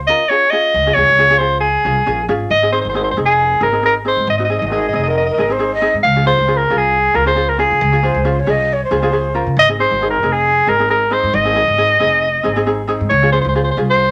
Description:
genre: calypso.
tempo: 136 BPM.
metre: 4/4.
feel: swing 54% on 16ths.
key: Db major.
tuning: A4 = 442 Hz.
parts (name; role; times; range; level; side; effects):
upright bass; bass; 0.0-14.1 s; F1 to Db3; -23 LUFS; equal; none.
warm soprano saxophone; melody; 0.1-14.1 s; Ab4 to F5; -16 LUFS; equal; none.
ukulele; accompaniment; 0.1-14.0 s; C4 to Bb4; -23 LUFS; equal; none.
breathy jazz flute; second line; 4.7-9.4 s; Ab4 to Eb5; -20 LUFS; equal; none.
room: moderate studio reverb, RT60 0.7 s.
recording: none.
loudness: -15 LUFS.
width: mono.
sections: 0.0-2.5 A section; 2.5-14.1 B section.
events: soprano saxophone solo 0.0-2.5.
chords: 0.0 Db; 2.5 Ab; 6.0 Dbmaj7; 9.6 Ab; 13.1 Dbmaj7.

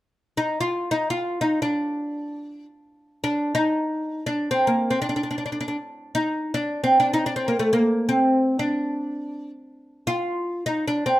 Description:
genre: arabic.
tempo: free time.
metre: none.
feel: none.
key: D maqam kurd.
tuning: A4 = 439 Hz.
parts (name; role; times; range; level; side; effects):
oud; solo; 0.4-11.2 s; A3 to F4; -21 LUFS; equal; none.
room: light reverb.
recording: close, detailed microphones.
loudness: -21 LUFS.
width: side -15 dB against mid.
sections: 0.2-11.2 A section.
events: none.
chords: none.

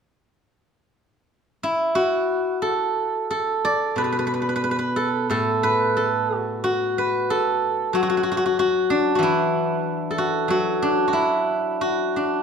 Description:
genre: chinese traditional, Chinese solo plucked strings.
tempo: 91 BPM.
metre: 4/4.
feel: rubato.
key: unclear.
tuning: A4 = 440 Hz.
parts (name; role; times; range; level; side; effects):
steel-string zither; solo; 1.6-12.4 s; A2 to D5; -20 LUFS; equal; none.
room: moderate concert hall reverb, RT60 2.0 s.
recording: minimal, uncompressed stereo recording.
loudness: -20 LUFS.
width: side -6 dB against mid.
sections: 0.0-2.6 A section; 2.6-12.4 B section.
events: none.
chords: none.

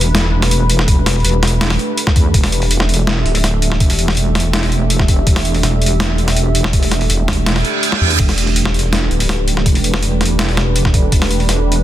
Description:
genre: half-time drum and bass.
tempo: 164 BPM.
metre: 4/4.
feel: half-time.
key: E minor.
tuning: A4 = 436 Hz.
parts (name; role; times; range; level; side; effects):
dark analog pad; sustained chords; 0.0-11.8 s; A3 to E5; -21 LUFS; right 2 dB; chorus, sidechain pumping.
deep soft wobble bass; bass; 0.0-11.8 s; D1 to E2; -16 LUFS; equal; chorus, tube saturation.
boom bap sampler-style drum kit; drums; 0.0-11.8 s; crash cymbal, hi-hat, snare drum; -18 LUFS; equal; overdrive.
electronic kick drum; drums; 0.9-11.2 s; none; -13 LUFS; equal; overdrive.
reverse cymbal; sound effects; 7.6-8.2 s; none; -17 LUFS; right 7 dB; none.
room: digital ambience.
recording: dense, heavily limited modern master.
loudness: -12 LUFS.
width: side -13 dB against mid.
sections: 0.0-11.8 A section.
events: reverse cymbal 7.6-8.2; kick drops out 7.8-8.2.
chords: 0.0 Em.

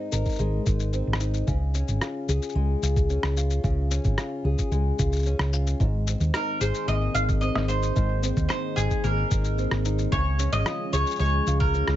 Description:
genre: folktronica.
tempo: 111 BPM.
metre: 4/4.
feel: straight.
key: Ab major.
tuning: A4 = 438 Hz.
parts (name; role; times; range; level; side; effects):
fingerpicked old ladder-braced acoustic guitar; arpeggios; 0.0-12.0 s; Ab2 to Bb4; -31 LUFS; left 2 dB; digital delay.
hollow-body short-scale fingered electric bass; bass; 0.1-12.0 s; Ab1 to Eb2; -24 LUFS; equal; none.
electronic shaker and rim click; drums; 0.1-12.0 s; none; -32 LUFS; left 2 dB; none.
electronic kick drum; drums; 0.3-11.7 s; none; -26 LUFS; equal; none.
warbly tape-like pad; sustained chords; 5.8-12.0 s; Eb3 to Ab4; -34 LUFS; equal; chorus, built-in reverb.
mandolin; melody; 6.3-12.0 s; Ab4 to F5; -28 LUFS; right 1 dB; digital delay.
room: little or no reverb.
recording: nothing above 7.8 kHz.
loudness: -22 LUFS.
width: side -13 dB against mid.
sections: 0.0-12.0 A section.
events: none.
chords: 0.0 Abadd9; 1.5 Db; 5.8 Abadd9; 10.1 Db.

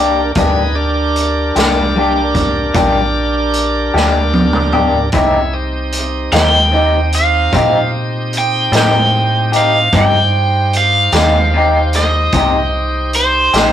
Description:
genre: slow blues.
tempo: 50 BPM (dotted quarters).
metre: 12/8.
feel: straight.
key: unclear.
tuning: A4 = 441 Hz.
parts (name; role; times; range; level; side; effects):
electric guitar through a small old amp; accompaniment; 0.0-13.7 s; C3 to G4; -15 LUFS; left 3 dB; harmonic tremolo.
bright tonewheel organ; sustained chords; 0.0-13.7 s; C4 to G5; -19 LUFS; right 1 dB; slow rotary speaker, overdrive.
metallic FM bass; bass; 0.0-13.7 s; A1 to Bb2; -17 LUFS; equal; none.
vintage drum kit; drums; 0.3-13.7 s; hi-hat, kick drum, snare drum, toms; -18 LUFS; equal; none.
cranked stack guitar; melody; 6.3-13.7 s; C5 to G5; -14 LUFS; right 1 dB; overdrive, phaser.
room: moderate stone room reverb, RT60 1.1 s.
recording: rough rehearsal-room recording, warm saturation.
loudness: -11 LUFS.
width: side -10 dB against mid.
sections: 0.0-13.7 A section.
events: drum fill 3.9-5.1.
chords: 0.0 Gm; 5.1 Cm.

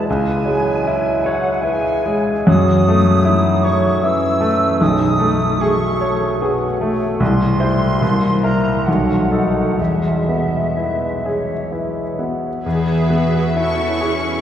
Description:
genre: classical, romantic movement for piano and orchestra.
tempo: 62-79 BPM.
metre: 3/4.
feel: rubato.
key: E major.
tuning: A4 = 440 Hz.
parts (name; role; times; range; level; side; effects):
bright grand piano; melody; 0.0-14.4 s; B1 to C#5; -16 LUFS; left 1 dB; none.
bright flute section; second line; 0.0-11.7 s; E5 to E6; -24 LUFS; right 1 dB; none.
clear clarinet; second line; 0.0-12.7 s; C#4 to C#5; -27 LUFS; equal; none.
mellow bassoon; accompaniment; 0.0-12.3 s; E3 to B3; -25 LUFS; right 3 dB; none.
rich symphonic viola section; accompaniment; 12.6-14.4 s; B3 to G#4; -26 LUFS; right 3 dB; none.
warm symphonic violin section; melody; 12.7-14.4 s; E5 to C#6; -24 LUFS; left 5 dB; none.
warm symphonic violin section; second line; 12.7-14.4 s; G#4 to E5; -26 LUFS; equal; none.
rich symphonic cello section; bass; 12.7-14.4 s; E4 to G#4; -26 LUFS; right 2 dB; none.
room: wet cathedral reverb, RT60 6.4 s.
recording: heard from further back in the room.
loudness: -15 LUFS.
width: side -10 dB against mid.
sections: 0.0-12.6 A section; 12.6-14.4 A section.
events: none.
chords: 0.1 C#m; 2.5 F#m7; 4.8 B13; 7.2 C; 8.0 C7; 8.9 B7; 9.8 E.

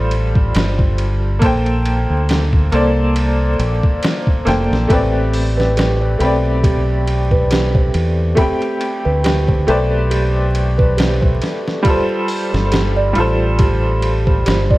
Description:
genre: trip hop.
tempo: 69 BPM.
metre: 4/4.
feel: swing 56% on 16ths.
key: A minor.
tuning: A4 = 440 Hz.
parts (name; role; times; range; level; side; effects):
clear upright piano; accompaniment; 0.0-14.8 s; G3 to B5; -19 LUFS; equal; tremolo, tape echo.
deep dub fingered electric bass; bass; 0.0-14.8 s; F1 to E2; -17 LUFS; equal; tube saturation.
trip hop sampler-style drum kit; drums; 0.1-14.8 s; hi-hat, kick drum, ride cymbal, snare drum; -19 LUFS; equal; overdrive, studio reverb.
music box; arpeggios; 4.9-14.8 s; G4 to D5; -22 LUFS; right 3 dB; tape echo.
room: little or no reverb.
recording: vinyl crackle.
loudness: -13 LUFS.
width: side -18 dB against mid.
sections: 0.0-14.8 A section.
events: none.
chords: 0.0 G9sus4; 1.4 Bbmaj9; 4.9 Am11; 11.9 G9sus4.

